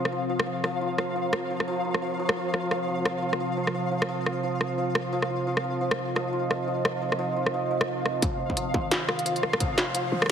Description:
half-time drum and bass; 174 BPM; 4/4; swing 58% on 16ths, half-time; A4 = 442 Hz
deep dark ambient pad; sustained chords; 0.0-10.3 s; C4 to Bb5; -31 LUFS; right 1 dB; chorus, built-in reverb, vintage 12-bit sampler grit, sidechain pumping
santur; arpeggios; 0.0-10.3 s; F3 to F4; -30 LUFS; right 1 dB; low-pass filter, dub echo
pulsing gated texture; texture; 0.0-10.3 s; F5; -35 LUFS; left 1 dB; chorus, built-in reverb
industrial drum kit; drums; 0.1-10.3 s; hi-hat, rim click, snare drum; -28 LUFS; equal
growling 808-style bass; bass; 8.2-10.3 s; F1 to Ab1; -35 LUFS; left 1 dB; high-pass filter
electronic kick drum; drums; 8.2-9.7 s; -29 LUFS; left 1 dB; distortion
riser; sound effects; 9.6-10.3 s; -44 LUFS; equal
moderate lush hall reverb, RT60 1.8 s, digital ambience; heavily compressed radio sound, multiband compression; -25 LUFS; side -8 dB against mid
0.0-8.2 A section; 8.2-10.3 B section
build-up 8.2-10.3; filter sweep on santur 8.2-10.3
0.0 F5
0.30 0.64 0.99 | 1.33 1.68 2.02 2.37 | 2.71 3.06 3.40 3.74 | 4.09 4.43 4.78 5.12 | 5.47 5.81 6.16 6.50 | 6.85 7.19 7.54 7.88 | 8.23 8.57 8.92 9.26 | 9.61 9.95 10.30

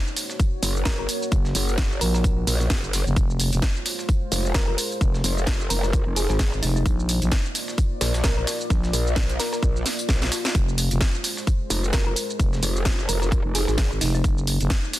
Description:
bass house; 130 BPM; 4/4; swing 57% on 16ths; F phrygian; A4 = 443 Hz
deep dark ambient pad; sustained chords; 0.0-15.0 s; Ab3 to D5; -33 LUFS; right 1 dB; chorus, built-in reverb, sidechain pumping
garage drum kit; drums; 0.1-15.0 s; hi-hat, shaker, snare drum; -27 LUFS; right 1 dB
breakbeat sampler-style drum kit; drums; 0.2-15.0 s; hi-hat, snare drum, tambourine; -35 LUFS; left 1 dB; sidechain pumping on perc, high-pass filter on perc, sidechain pumping on hats, high-pass filter on hats, high-pass filter on snare
electronic kick drum; drums; 0.4-14.8 s; -22 LUFS; equal
growl bass; bass; 0.6-14.0 s; F1 to Bb1; -24 LUFS; equal; chorus, tube saturation, sidechain pumping
thumb-piano-like synth pluck; melody; 0.9-14.2 s; Eb4 to Bb4; -32 LUFS; left 1 dB; chorus, dub echo
growling FM bass; bass; 1.3-14.7 s; F1 to Bb1; -23 LUFS; equal; overdrive, sidechain pumping
little or no reverb; dense, heavily limited modern master; -20 LUFS; side -15 dB against mid
0.0-15.0 A section
drum fill 9.9-10.5
0.0 Gb; 3.2 Fm; 6.9 Bb; 10.5 Fm; 14.2 Gb
0.40 0.86 | 1.32 1.78 2.24 2.70 | 3.16 3.63 4.09 4.55 | 5.01 5.47 5.93 6.39 | 6.86 7.32 7.78 8.24 | 8.70 9.16 9.63 10.09 | 10.55 11.01 11.47 11.93 | 12.39 12.86 13.32 13.78 | 14.24 14.70

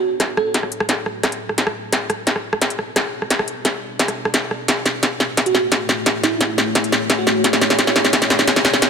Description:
half-time drum and bass; 174 BPM; 4/4; half-time; A4 = 442 Hz
bell-like FM electric piano; melody; 0.0-0.7, 5.5-7.4 s; E4 to A4; -23 LUFS; right 3 dB; chorus, phaser, ping-pong delay
deep dark ambient pad; sustained chords; 0.0-8.9 s; A3 to E5; -27 LUFS; left 1 dB; chorus, built-in reverb, sidechain pumping
electronic kick drum; drums; 0.2-8.9 s; -28 LUFS; equal
industrial drum kit; drums; 0.2-8.9 s; hi-hat, rim click, snare drum; -17 LUFS; equal
moderate lush hall reverb, RT60 2.0 s; -16 LUFS; side -6 dB against mid
0.0-8.9 A section
build-up 0.0-8.9; drum fill 0.0-8.9; filter sweep on ambient pad 0.0-8.9
0.0 F#m7; 1.9 G; 4.7 A; 7.4 Bmadd9
0.20 | 0.55 0.89 1.24 1.58 | 1.93 2.27 2.62 2.96 | 3.31 3.65 4.00 4.34 | 4.68 5.03 5.38 5.72 | 6.07 6.41 6.75 7.10 | 7.44 7.79 8.13 8.48 | 8.82

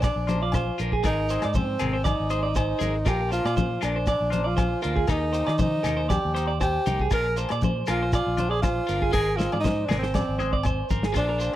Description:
highlife guitar band; 119 BPM; 4/4; straight; A4 = 441 Hz
breathy tenor saxophone; melody; 0.0-11.6 s; C4 to Bb4; -27 LUFS; equal
clean electric guitar; arpeggios; 0.0-11.5 s; Ab4 to D5; -30 LUFS; right 6 dB; spring reverb, slapback echo
fingered electric bass; bass; 0.0-11.5 s; G1 to Eb3; -29 LUFS; equal
warm soul drum kit; drums; 0.0-11.5 s; hi-hat, kick drum, rim click, snare drum, toms; -28 LUFS; equal
agogo bells; percussion; 0.0-11.3 s; -36 LUFS; left 6 dB
congas; percussion; 0.0-11.2 s; -31 LUFS; left 3 dB
shekere; percussion; 0.0-11.5 s; -33 LUFS; right 2 dB
clean electric guitar; accompaniment; 0.3-11.6 s; Eb3 to Ab4; -34 LUFS; left 8 dB; phaser
small room ambience; dry, close 1970s-style studio recording; -22 LUFS; side -13 dB against mid
0.0-11.2 A section
drum fill 9.1-11.2
0.0 Bb; 1.0 Ab; 3.1 Bb; 5.1 Eb; 7.1 Bb; 9.1 Ab
0.03 0.53 | 1.04 1.54 2.05 2.56 | 3.06 3.57 4.07 4.58 | 5.09 5.59 6.10 6.60 | 7.11 7.62 8.12 8.63 | 9.13 9.64 10.14 10.65 | 11.16

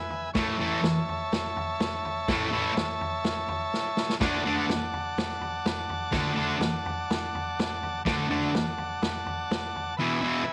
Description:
garage rock duo or trio; 125 BPM; 4/4; straight; A4 = 440 Hz
combo organ; sustained chords; 0.0-10.5 s; B4 to A5; -33 LUFS; equal
vintage drum kit; drums; 0.1-9.9 s; kick drum, snare drum, toms; -34 LUFS; equal
thick fuzz guitar; riff; 0.3-10.4 s; E2 to D4; -29 LUFS; equal; distortion
moderate plate reverb, RT60 1.0 s, small room reverb; -29 LUFS; mono
0.0-10.5 A section
drum fill 3.7-4.2
0.4 A; 4.2 D; 10.0 E
| 0.35 0.83 1.32 1.80 | 2.28 2.76 3.24 3.73 | 4.21 4.69 5.17 5.65 | 6.13 6.62 7.10 7.58 | 8.06 8.54 9.02 9.50 | 9.98 10.46

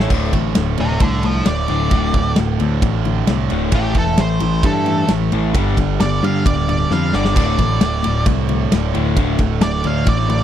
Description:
classic rock; 132 BPM; 4/4; straight; A4 = 440 Hz
overdriven electric guitar; riff; 0.0-10.4 s; D2 to C#4; -23 LUFS; right 14 dB; spring reverb
overdriven semi-hollow guitar; riff; 0.0-10.4 s; D2 to A4; -21 LUFS; left 10 dB
growling picked electric bass; bass; 0.0-10.4 s; D1 to G2; -20 LUFS; equal; overdrive
big rock drum kit; drums; 0.0-10.4 s; crash cymbal, kick drum, ride cymbal, snare drum; -19 LUFS; equal
octave-fuzz lead guitar; melody; 0.8-10.4 s; G4 to F5; -23 LUFS; right 2 dB; distortion, tape echo
little or no reverb; dry, close 1970s-style studio recording; -14 LUFS; side -10 dB against mid
0.1-10.4 A section
lead electric guitar solo 0.1-10.4; drum fill 6.9-7.4
0.1 D5; 3.7 Am7; 5.6 G5; 7.4 D5
| 0.11 0.56 1.02 1.47 | 1.92 2.38 2.83 3.28 | 3.74 4.19 4.64 5.10 | 5.55 6.00 6.46 6.91 | 7.37 7.82 8.27 8.72 | 9.18 9.63 10.08

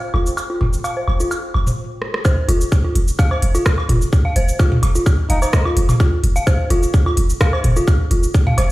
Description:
minimal techno; 128 BPM; 4/4; swing 53% on 16ths; A4 = 442 Hz
deep dark ambient pad; texture; 0.0-1.8 s; F4 to G5; -38 LUFS; equal; chorus, built-in reverb, sidechain pumping
pulsing gated texture; texture; 0.1-1.8 s; C5; -40 LUFS; right 3 dB
dark detuned synth bell; riff; 0.1-8.6 s; F4 to F5; -23 LUFS; equal; chorus, sidechain pumping, low-pass filter, digital delay
punchy sub bass; bass; 0.1-8.7 s; F1; -16 LUFS; equal; sidechain pumping
electronic woodblock and toms; percussion; 0.1-8.7 s; -23 LUFS; equal; digital delay
minimal click drum kit; drums; 0.3-8.7 s; cabasa, hi-hat, rim click; -26 LUFS; equal; overdrive
electronic kick drum; drums; 2.3-8.4 s; -14 LUFS; equal; overdrive
trumpet with cup mute; melody; 5.3-5.5 s; Eb4; -25 LUFS; equal; digital delay
light reverb, digital ambience; played on a big sound system in a bare room, stone room reverb; -14 LUFS; side -18 dB against mid
0.0-2.3 A section; 2.3-8.7 B section
stop 1.8-2.3; drum fill 2.0; drop 2.3-8.7
0.0 F5
| 0.38 0.84 1.31 1.78 | 2.25 2.72 3.19 3.66 | 4.13 4.59 5.06 5.53 | 6.00 6.47 6.94 7.41 | 7.88 8.34

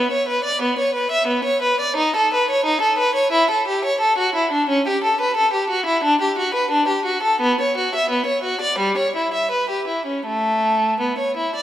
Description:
classical, baroque-style suite movement for unaccompanied violin; 87 BPM; 4/4; uneven beats, rubato; A4 = 439 Hz
clear violin; solo; 0.0-11.6 s; G3 to E5; -17 LUFS; equal
wet scoring stage reverb, RT60 1.9 s; -17 LUFS; side -12 dB against mid
0.0-11.6 A section
0.61 1.28 | 1.98 2.65 3.32 3.99 | 4.66 5.34 6.01 6.68 | 7.39 8.09 8.77 9.49 | 10.23 10.97

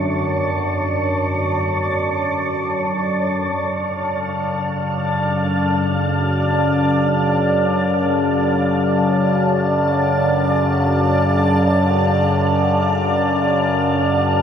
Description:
dark ambient drone; free time; A4 = 444 Hz
granular cloud pad; sustained chords; 0.0-14.4 s; D5 to A5; -20 LUFS; right 1 dB; built-in reverb
analog drone; drone; 0.0-14.4 s; F#2 to D3; -18 LUFS; left 1 dB; chorus
wind-like tuned noise texture; texture; 0.0-14.4 s; C#5 to E#5; -26 LUFS; equal; built-in reverb
wet huge ambient reverb, RT60 7.8 s; -16 LUFS; side -8 dB against mid
0.0-3.5 A section; 3.5-14.4 A section
0.0 D
free time

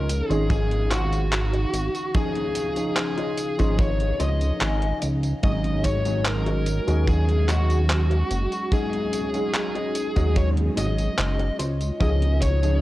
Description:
vaporwave; 73 BPM; 4/4; straight; Db major; A4 = 440 Hz
biting lead guitar; melody; 0.0-12.8 s; Gb4 to Eb5; -28 LUFS; left 1 dB; overdrive, vintage 12-bit sampler grit, tape echo
warbly lo-fi synth keys; accompaniment; 0.0-12.8 s; Eb3 to Ab4; -30 LUFS; equal; lush chorus
warbly tape-like pad; sustained chords; 0.1-12.8 s; Db3 to F5; -35 LUFS; right 1 dB; chorus, built-in reverb
mellow electric guitar; riff; 0.0-12.7 s; F4 to Ab5; -33 LUFS; left 1 dB; analog chorus
chorused synth bass; bass; 0.0-12.8 s; Gb1 to Eb2; -22 LUFS; equal; tube saturation
detuned 8-bit digital drum machine; drums; 0.1-12.8 s; handclaps, hi-hat, tambourine; -30 LUFS; equal
kick drum; drums; 0.5-12.6 s; -28 LUFS; equal
little or no reverb; worn, warbling old tape, cassette tape, warbly pitch drift; -21 LUFS; side -16 dB against mid
0.0-12.8 A section
clean electric guitar fill 4.2-5.4
0.0 Dbmaj9; 5.4 Ab7sus4; 11.6 Dbmaj9
0.50 1.32 | 2.15 2.97 3.79 4.61 | 5.43 6.26 7.08 7.90 | 8.72 9.54 10.37 11.19 | 12.01

